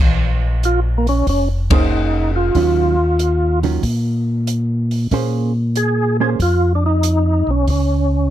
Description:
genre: soul jazz organ trio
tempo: 94 BPM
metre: 4/4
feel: swing 68% on 8ths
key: Bb minor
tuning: A4 = 443 Hz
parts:
  - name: mellow tonewheel organ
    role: bass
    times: 0.0-8.3 s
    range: F1 to Bb2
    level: -17 LUFS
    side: equal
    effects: chorus vibrato, slow rotary speaker
  - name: open jazz drum kit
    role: drums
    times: 0.6-7.9 s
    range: hi-hat, kick drum, ride cymbal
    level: -20 LUFS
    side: equal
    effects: none
  - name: percussive tonewheel organ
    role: melody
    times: 0.7-8.3 s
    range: Bb3 to Ab4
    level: -18 LUFS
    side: right 1 dB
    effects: slow rotary speaker, overdrive, chorus vibrato, plate reverb
  - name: hollow-body jazz guitar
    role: accompaniment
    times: 1.7-6.4 s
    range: Eb3 to C5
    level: -21 LUFS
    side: right 8 dB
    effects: none
room: little or no reverb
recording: dark, warm production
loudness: -14 LUFS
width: side -12 dB against mid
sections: 0.0-8.3 A section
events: band accent 1.6-1.9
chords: 0.0 Bbm9; 2.6 Ebm9; 5.1 Bbm9

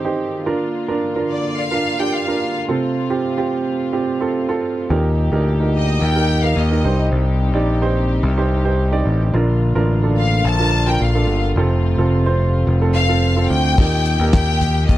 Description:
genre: piano-driven pop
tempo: 108 BPM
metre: 4/4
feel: straight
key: Bb major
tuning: A4 = 440 Hz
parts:
  - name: clear upright piano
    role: accompaniment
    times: 0.0-15.0 s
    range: G2 to D5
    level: -20 LUFS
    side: right 4 dB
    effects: none
  - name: warm studio string section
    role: sustained chords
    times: 0.0-15.0 s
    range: C3 to G4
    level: -27 LUFS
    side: left 3 dB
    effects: none
  - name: bright symphonic violin section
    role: melody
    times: 1.3-15.0 s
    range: D5 to A5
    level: -22 LUFS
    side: left 3 dB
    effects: slapback echo
  - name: picked electric bass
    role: bass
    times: 4.9-15.0 s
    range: F1 to Eb2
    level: -17 LUFS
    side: left 1 dB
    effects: none
  - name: damped 70s drum kit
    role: drums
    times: 13.8-15.0 s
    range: crash cymbal, handclaps, hi-hat, kick drum, snare drum, toms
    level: -16 LUFS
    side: left 1 dB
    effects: none
room: little or no reverb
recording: dry, close 1970s-style studio recording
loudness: -15 LUFS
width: side -14 dB against mid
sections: 0.0-13.8 A section; 13.8-15.0 B section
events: none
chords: 0.5 Bb; 2.7 F; 4.9 Eb; 6.8 Cm; 9.3 Bb; 11.6 F; 13.8 Eb

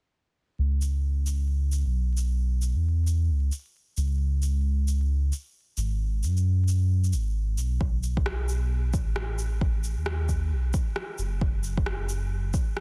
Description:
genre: future garage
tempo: 133 BPM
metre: 4/4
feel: swing 61% on 16ths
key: C# minor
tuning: A4 = 441 Hz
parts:
  - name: dark detuned saw bass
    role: bass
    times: 0.6-12.5 s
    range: F#1 to F#2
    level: -27 LUFS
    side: equal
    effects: sidechain pumping
  - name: electronic shaker and rim click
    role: drums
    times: 0.8-12.8 s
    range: none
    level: -39 LUFS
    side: equal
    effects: overdrive
  - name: electronic kick drum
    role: drums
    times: 7.8-12.7 s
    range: none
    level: -29 LUFS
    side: equal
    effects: none
room: little or no reverb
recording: dense, heavily limited modern master, vinyl crackle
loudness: -27 LUFS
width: mono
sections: 0.6-12.8 A section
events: none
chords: none

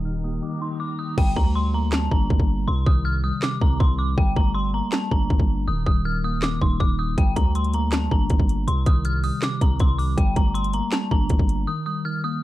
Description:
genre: hip hop, trap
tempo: 160 BPM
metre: 4/4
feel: half-time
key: G minor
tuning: A4 = 440 Hz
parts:
  - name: mellow tine electric piano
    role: accompaniment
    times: 0.0-12.4 s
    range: C3 to Eb4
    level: -27 LUFS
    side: equal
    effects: medium stereo tremolo
  - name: muted studio string section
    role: sustained chords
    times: 0.0-1.2 s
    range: Eb3 to Bb5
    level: -40 LUFS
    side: equal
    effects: none
  - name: distorted 808-style bass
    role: bass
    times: 0.0-11.7 s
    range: Eb1 to D2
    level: -24 LUFS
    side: equal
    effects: distortion
  - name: trap drum kit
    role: drums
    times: 0.0-11.6 s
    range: crash cymbal, handclaps, hi-hat, kick drum, snare drum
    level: -21 LUFS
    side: equal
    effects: none
  - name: dark detuned synth bell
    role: melody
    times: 0.1-12.4 s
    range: G5 to F6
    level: -29 LUFS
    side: left 1 dB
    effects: chorus
room: little or no reverb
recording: dark, warm production, low-pass filter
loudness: -19 LUFS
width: side -16 dB against mid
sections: 0.0-1.2 A section; 1.2-12.4 B section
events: filter sweep 0.0-1.2; hi-hats muted 1.2-7.2; break 11.7-12.4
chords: 0.0 Eb; 1.2 Gmadd9; 2.7 Cm; 4.2 Gmadd9; 5.7 Eb; 7.2 Gmadd9; 8.7 Cm; 10.2 Gmadd9; 11.7 Eb

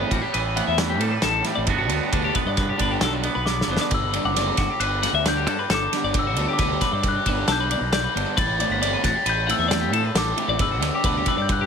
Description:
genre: math rock and midwest emo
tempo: 134 BPM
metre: 5/4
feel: straight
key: G major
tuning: A4 = 441 Hz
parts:
  - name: twangy electric guitar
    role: accompaniment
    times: 0.0-6.1 s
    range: G2 to F#4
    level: -29 LUFS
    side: right 10 dB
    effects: none
  - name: twelve-string electric guitar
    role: arpeggios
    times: 0.0-11.7 s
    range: F#4 to F#5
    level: -26 LUFS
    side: left 8 dB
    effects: none
  - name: crunchy overdriven guitar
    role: riff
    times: 0.0-11.3 s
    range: D3 to E4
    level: -28 LUFS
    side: right 2 dB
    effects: none
  - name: fuzz fingered electric bass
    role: bass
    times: 0.0-11.6 s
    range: F#1 to A2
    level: -27 LUFS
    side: equal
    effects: overdrive
  - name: loose indie drum kit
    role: drums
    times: 0.1-11.6 s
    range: kick drum, ride cymbal, snare drum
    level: -24 LUFS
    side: right 1 dB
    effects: none
  - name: glockenspiel with rubber mallets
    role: melody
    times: 3.5-11.7 s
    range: D6 to B6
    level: -26 LUFS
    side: left 2 dB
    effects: none
room: little or no reverb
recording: none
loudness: -20 LUFS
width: side -6 dB against mid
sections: 0.0-3.9 A section; 3.9-11.7 B section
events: drum fill 3.5-3.9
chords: 0.0 Am11; 1.7 Gmaj7; 8.4 Am11; 10.6 Gmaj7

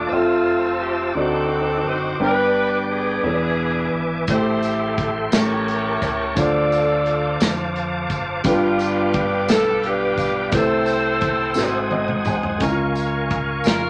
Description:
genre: slow gospel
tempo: 58 BPM (dotted quarters)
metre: 6/8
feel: straight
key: unclear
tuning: A4 = 440 Hz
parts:
  - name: warm saxophone section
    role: melody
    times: 0.0-13.9 s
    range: A3 to D5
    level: -24 LUFS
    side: equal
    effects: none
  - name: warm upright piano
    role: accompaniment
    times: 0.0-13.9 s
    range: G2 to A5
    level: -25 LUFS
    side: equal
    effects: none
  - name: tonewheel organ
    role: sustained chords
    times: 0.0-13.9 s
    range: Eb4 to E6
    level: -27 LUFS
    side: equal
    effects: fast rotary speaker, chorus vibrato
  - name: deep dub fingered electric bass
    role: bass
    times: 0.0-13.9 s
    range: E1 to F2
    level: -36 LUFS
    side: equal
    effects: none
  - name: modern studio drum kit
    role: drums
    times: 4.3-13.8 s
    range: hi-hat, kick drum, snare drum, toms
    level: -26 LUFS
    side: equal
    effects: none
  - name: tambourine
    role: percussion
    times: 4.3-13.9 s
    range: none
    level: -40 LUFS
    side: equal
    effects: none
room: wet studio reverb, RT60 0.5 s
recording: none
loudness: -20 LUFS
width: mono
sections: 0.0-12.6 A section; 12.6-13.9 B section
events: drum fill 11.6-12.6; upright piano fill 11.6-12.6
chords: 0.1 Fmaj7; 1.2 D7b9; 2.2 G; 3.2 E7; 4.3 Am7; 5.3 A7b9; 6.4 Dm7; 8.4 G7; 10.5 C6; 11.6 Ab7; 12.6 Db6

